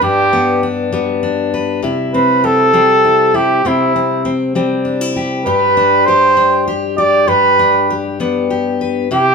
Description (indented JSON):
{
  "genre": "folk",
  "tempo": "66 BPM (dotted quarters)",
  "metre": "6/8",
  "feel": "straight",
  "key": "G major",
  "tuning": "A4 = 440 Hz",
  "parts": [
    { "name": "mellow trumpet", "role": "melody", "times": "0.0-9.3 s", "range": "E4 to D5", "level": "-11 LUFS", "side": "right 2 dB", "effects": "none" },
    { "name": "fingerpicked steel-string acoustic guitar", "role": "accompaniment", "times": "0.0-9.3 s", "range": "G2 to B4", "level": "-16 LUFS", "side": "left 4 dB", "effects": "none" }
  ],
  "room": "moderate large studio reverb, RT60 1.3 s",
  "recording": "band playing live in one room",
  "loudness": "-11 LUFS",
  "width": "side -5 dB against mid",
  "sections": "0.0-9.3 A section",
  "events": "none",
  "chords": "0.0 G; 1.8 C; 5.5 G"
}